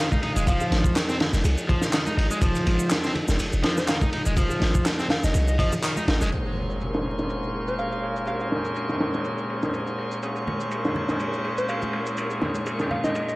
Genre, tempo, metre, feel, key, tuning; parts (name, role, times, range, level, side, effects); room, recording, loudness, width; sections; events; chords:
breakbeat, breaks; 123 BPM; 4/4; swing 55% on 16ths; A4 = 440 Hz
soft struck synth lead; melody; 0.0-0.7, 3.8-8.5, 11.6-13.4 s; C5 to F5; -30 LUFS; equal; chorus, old record sound, analog delay
tonewheel organ; sustained chords; 0.0-13.4 s; Bb2 to C5; -33 LUFS; equal; overdrive, slow rotary speaker, vintage 12-bit sampler grit, sidechain pumping
crunchy overdriven guitar; riff; 0.0-6.3 s; Eb3 to Eb4; -28 LUFS; equal; low-pass filter, analog delay
crunchy breakbeat drum kit; drums; 0.1-13.3 s; kick drum, ride cymbal, snare drum; -26 LUFS; equal; low-pass filter on kick, low-pass filter on cymbals, low-pass filter on snare, low-pass filter on room
electronic shaker and handclaps; drums; 0.1-13.4 s; -34 LUFS; equal; low-pass filter on perc, low-pass filter on snare, low-pass filter on room
congas and bongos; percussion; 0.1-6.3, 10.5-13.3 s; -35 LUFS; right 1 dB
warm 808-style bass; bass; 0.4-6.3 s; Eb1 to C2; -23 LUFS; equal; tube saturation
warm horn section; stabs; 6.3-13.4 s; Db4 to C5; -30 LUFS; equal; vintage 12-bit sampler grit, low-pass filter, analog delay
impact; sound effects; 6.3-8.3 s; -33 LUFS; equal
moderate studio reverb, RT60 0.6 s; dry, gritty hardware recording, vinyl crackle; -22 LUFS; side -22 dB against mid
0.0-6.3 A section; 6.3-13.4 B section
band accent 5.8; impact 6.3-8.3; filter sweep on horn section 6.3-13.4
0.0 Fm7; 6.3 Bbm9